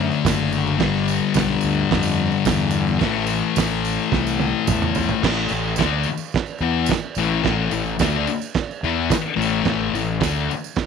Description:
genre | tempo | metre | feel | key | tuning
garage rock duo or trio | 108 BPM | 4/4 | straight | unclear | A4 = 440 Hz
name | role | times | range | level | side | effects
thick fuzz guitar | riff | 0.0-10.5 s | G2 to E4 | -20 LUFS | left 9 dB | distortion
fuzz fingered electric bass | bass | 0.0-10.5 s | F#1 to F2 | -26 LUFS | right 3 dB | overdrive, tube saturation
tambourine | percussion | 0.1-10.8 s | none | -36 LUFS | right 17 dB | none
cloth-damped thuddy drum kit | drums | 0.2-10.9 s | crash cymbal, hi-hat, kick drum, snare drum, toms | -24 LUFS | right 7 dB | none
room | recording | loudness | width
studio ambience | 1960s-style stereo with parts hard left and right | -18 LUFS | side -6 dB against mid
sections
0.0-5.2 A section; 5.2-10.9 B section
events
drum fill 4.1-5.2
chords
0.0 D; 0.8 G5; 3.0 Am; 5.2 A5

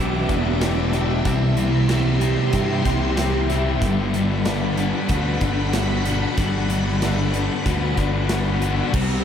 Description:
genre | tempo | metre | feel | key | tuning
rock, shoegaze and dream pop | 94 BPM | 4/4 | straight | G major | A4 = 440 Hz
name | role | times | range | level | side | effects
phased string machine | sustained chords | 0.0-9.2 s | G4 to D6 | -29 LUFS | right 1 dB | ensemble chorus, phaser
direct-recorded clean electric guitar | arpeggios | 0.0-9.2 s | E3 to G4 | -31 LUFS | left 5 dB | analog chorus, analog delay
distorted electric guitar | riff | 0.0-9.2 s | E2 to C4 | -28 LUFS | equal | distortion
overdriven semi-hollow guitar | riff | 0.0-9.2 s | C3 to G4 | -32 LUFS | right 7 dB | none
thick fuzz guitar | riff | 0.0-9.2 s | C3 to G4 | -24 LUFS | left 3 dB | distortion, lush chorus
fuzz fingered electric bass | bass | 0.0-9.2 s | E1 to G2 | -24 LUFS | equal | overdrive
big rock drum kit | drums | 0.3-9.1 s | crash cymbal, hi-hat, kick drum, snare drum | -27 LUFS | right 1 dB | none
room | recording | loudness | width
wet lush hall reverb, RT60 2.8 s | dreamy mix soaked in reverb | -18 LUFS | side -8 dB against mid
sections
0.0-8.9 A section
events
none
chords
0.0 Em7; 1.3 Cmaj7; 3.8 Gmaj7

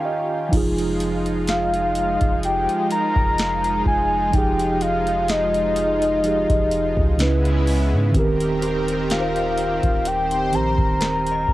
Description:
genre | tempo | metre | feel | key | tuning
contemporary R&B | 63 BPM | 4/4 | swing 54% on 16ths | F minor | A4 = 439 Hz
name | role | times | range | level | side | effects
mellow tine electric piano | accompaniment | 0.0-11.5 s | Db3 to Bb5 | -24 LUFS | right 2 dB | medium stereo tremolo
lush unison pad | sustained chords | 0.0-11.5 s | Db3 to C5 | -27 LUFS | equal | chorus, sidechain pumping
long sustained 808-style bass | bass | 0.5-11.5 s | Eb1 to Ab2 | -25 LUFS | equal | none
booming analog drum machine | drums | 0.5-11.5 s | crash cymbal, hi-hat, kick drum, snare drum | -24 LUFS | equal | cassette tape
soft octave-layered synth lead | melody | 1.5-11.5 s | Eb5 to Bb5 | -21 LUFS | left 1 dB | chorus, tremolo, analog delay
synth chime | texture | 8.6-11.5 s | G4 to Eb5 | -33 LUFS | left 2 dB | none
room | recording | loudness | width
light reverb | home recording on cassette | -18 LUFS | side -16 dB against mid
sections
0.5-11.5 A section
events
break 0.0-0.5; tine electric piano fill 0.0-0.5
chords
0.0 Eb9; 0.5 Fm9; 7.2 Dbm7; 8.1 Cm7/Eb

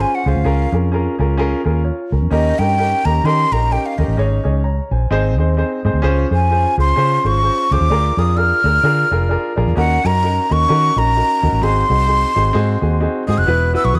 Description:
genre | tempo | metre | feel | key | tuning
uptempo 1960s-style soul | 129 BPM | 4/4 | swing 59% on 8ths | unclear | A4 = 440 Hz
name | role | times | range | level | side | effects
breathy jazz flute | melody | 0.0-14.0 s | Eb5 to Gb6 | -20 LUFS | equal | none
warm upright piano | accompaniment | 0.0-14.0 s | B3 to Bb5 | -23 LUFS | equal | none
vintage muted fingered electric bass | bass | 0.0-14.0 s | E1 to Eb3 | -19 LUFS | equal | none
room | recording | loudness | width
moderate echo chamber reverb, RT60 1.5 s | none | -16 LUFS | mono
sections
0.0-13.5 A section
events
none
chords
0.5 Bbm7/Db; 2.3 Eb7; 4.2 Absus4; 5.1 Ab; 6.0 Dbmaj7; 7.9 Bb7/D; 9.8 Ebm7; 11.6 Ab7; 13.5 Esus2

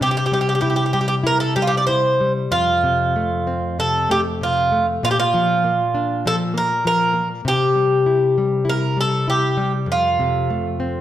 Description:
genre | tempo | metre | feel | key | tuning
fado-style ballad | 98 BPM | 4/4 | rubato | F major | A4 = 440 Hz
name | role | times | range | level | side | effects
Irish bouzouki | melody | 0.0-11.0 s | F4 to D5 | -18 LUFS | right 1 dB | none
nylon-string guitar | accompaniment | 0.0-11.0 s | F2 to E4 | -21 LUFS | left 2 dB | none
room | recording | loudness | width
wet recital hall reverb, RT60 1.4 s | none | -16 LUFS | side -12 dB against mid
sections
0.0-11.0 A section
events
none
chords
0.0 C; 2.5 F; 5.0 Bb5; 7.4 C; 9.9 F

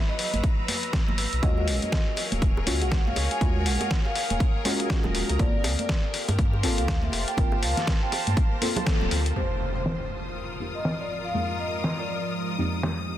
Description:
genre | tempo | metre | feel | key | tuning
deep house | 121 BPM | 4/4 | swing 60% on 16ths | unclear | A4 = 440 Hz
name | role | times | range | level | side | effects
deep dark ambient pad | sustained chords | 0.1-13.2 s | F3 to Fb6 | -36 LUFS | right 1 dB | chorus, built-in reverb, sidechain pumping
deep mellow chord stab | stabs | 0.0-13.2 s | F2 to Bb4 | -32 LUFS | equal | chorus, sidechain pumping, digital delay
clear studio string section | texture | 0.0-13.2 s | Gb3 to Eb6 | -36 LUFS | left 3 dB | sidechain pumping
string machine, violins | texture | 0.0-9.4 s | Bb4 to Bb5 | -38 LUFS | left 1 dB | ensemble chorus, sidechain pumping
vibraphone with soft mallets | melody | 0.1-12.3 s | C5 to Ab5 | -34 LUFS | equal | dub echo
dusty soul sampler-style drum kit | drums | 0.2-13.0 s | hi-hat, snare drum | -30 LUFS | left 1 dB | low-pass filter on hats, low-pass filter on snare
sub bass with octave | bass | 0.3-9.3 s | D1 to G2 | -27 LUFS | equal | tube saturation, sidechain pumping
congas and bongos | percussion | 0.3-9.1 s | none | -35 LUFS | right 2 dB | none
electronic kick drum | drums | 0.4-9.0 s | none | -24 LUFS | equal | none
impact | sound effects | 9.4-11.3 s | none | -34 LUFS | equal | none
room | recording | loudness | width
light reverb | dense, heavily limited modern master | -23 LUFS | side -12 dB against mid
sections
0.0-9.4 A section; 9.4-13.2 B section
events
band accent 8.9; impact 9.4-11.3; filter sweep on synth stab 9.4-13.2; filter sweep on ambient pad 9.4-13.2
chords
0.0 Dbm11 (rootless); 1.4 Ebm11; 5.4 Gm11; 9.4 Fm11

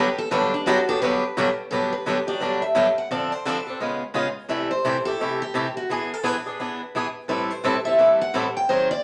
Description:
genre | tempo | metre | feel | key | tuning
jazz | 172 BPM | 4/4 | swing 62% on 8ths | G major | A4 = 440 Hz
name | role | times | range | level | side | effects
picked steel-string acoustic guitar | melody | 0.0-9.0 s | D4 to G5 | -26 LUFS | equal | none
picked swing-style acoustic guitar | accompaniment | 0.0-8.9 s | G2 to A4 | -26 LUFS | equal | none
room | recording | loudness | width
wet studio reverb, RT60 0.6 s | none | -23 LUFS | mono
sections
0.0-1.7 A section; 1.7-9.0 B section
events
steel-string acoustic guitar solo 0.0-1.7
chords
0.0 Gmaj7; 3.1 Dm7; 3.8 C#7; 4.5 C6; 5.9 E7; 7.3 Am7

